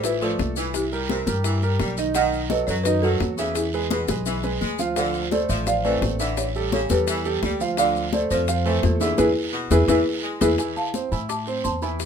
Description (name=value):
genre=latin, salsa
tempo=171 BPM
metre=4/4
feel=straight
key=unclear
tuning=A4 = 439 Hz
part: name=folk marimba with medium mallets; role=melody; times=0.0-12.1 s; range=E4 to D6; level=-24 LUFS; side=equal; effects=none
part: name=bright saxophone section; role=second line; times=0.0-10.4 s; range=B2 to G#3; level=-30 LUFS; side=left 2 dB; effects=none
part: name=bright concert grand piano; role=accompaniment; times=0.0-12.1 s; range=D#3 to F5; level=-26 LUFS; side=right 5 dB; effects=none
part: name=upright bass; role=bass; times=0.0-12.1 s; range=A1 to A2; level=-26 LUFS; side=left 1 dB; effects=none
part: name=bongos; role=percussion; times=0.0-12.1 s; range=none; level=-32 LUFS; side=left 9 dB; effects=none
part: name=congas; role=percussion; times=0.0-12.1 s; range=none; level=-30 LUFS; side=left 3 dB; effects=none
part: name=guiro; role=percussion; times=0.0-12.1 s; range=none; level=-36 LUFS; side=right 5 dB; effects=none
part: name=maracas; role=percussion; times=0.0-12.1 s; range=none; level=-34 LUFS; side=left 8 dB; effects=none
room=moderate studio ambience, RT60 0.5 s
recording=minimal, uncompressed stereo recording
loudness=-20 LUFS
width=side -7 dB against mid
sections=0.0-10.6 A section; 10.6-12.1 B section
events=drum fill 3.9-5.0, 9.9-10.6; band accent 9.2-10.6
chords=0.0 Dmadd9; 0.7 C7; 2.2 B7; 3.6 E; 5.0 Dm7; 6.4 A7; 7.8 Dm7; 9.2 E; 10.6 Am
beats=0.04 0.39 | 0.74 1.10 1.45 1.80 | 2.15 2.50 2.86 3.21 | 3.56 3.91 4.26 4.62 | 4.97 5.32 5.67 6.02 | 6.37 6.72 7.08 7.43 | 7.78 8.13 8.48 8.83 | 9.19 9.54 9.89 10.24 | 10.59 10.94 11.29 11.65 | 12.00